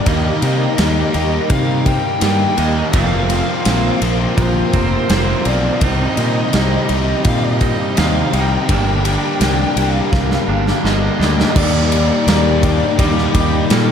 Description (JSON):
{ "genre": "rock, shoegaze and dream pop", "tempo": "84 BPM", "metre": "4/4", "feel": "straight", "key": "unclear", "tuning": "A4 = 442 Hz", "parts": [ { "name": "biting lead guitar", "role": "melody", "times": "0.0-13.9 s", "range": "G4 to G5", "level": "-22 LUFS", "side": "left 1 dB", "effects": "overdrive, tape echo" }, { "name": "string machine, cellos", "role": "sustained chords", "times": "0.0-13.9 s", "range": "Bb3 to Bb5", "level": "-26 LUFS", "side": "equal", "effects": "none" }, { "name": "biting overdriven guitar", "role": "riff", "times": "0.0-13.9 s", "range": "F2 to Eb4", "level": "-23 LUFS", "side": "equal", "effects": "none" }, { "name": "crunchy overdriven guitar", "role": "riff", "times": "0.0-13.9 s", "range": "F2 to G4", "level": "-22 LUFS", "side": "left 7 dB", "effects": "analog chorus" }, { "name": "twangy electric guitar", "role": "riff", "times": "0.0-13.9 s", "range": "F2 to Eb4", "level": "-24 LUFS", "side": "right 7 dB", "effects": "reverse reverb" }, { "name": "fuzz fingered electric bass", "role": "bass", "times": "0.1-13.9 s", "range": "F1 to C3", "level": "-18 LUFS", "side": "equal", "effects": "overdrive" }, { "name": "big rock drum kit", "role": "drums", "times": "0.1-13.9 s", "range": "crash cymbal, kick drum, ride cymbal, snare drum", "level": "-19 LUFS", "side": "equal", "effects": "none" } ], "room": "moderate church reverb, RT60 3.0 s", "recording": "dreamy mix soaked in reverb", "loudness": "-13 LUFS", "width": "side -8 dB against mid", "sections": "0.1-11.6 A section; 11.6-13.9 B section", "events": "drum fill 10.1-11.6", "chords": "0.1 Eb; 2.9 Fsus4; 5.8 Cm7; 8.7 Gm; 11.6 Ebmaj7", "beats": "| 0.07 0.79 1.50 2.22 | 2.94 3.66 4.38 5.10 | 5.82 6.54 7.25 7.97 | 8.69 9.41 10.13 10.85 | 11.56 12.28 12.99 13.71" }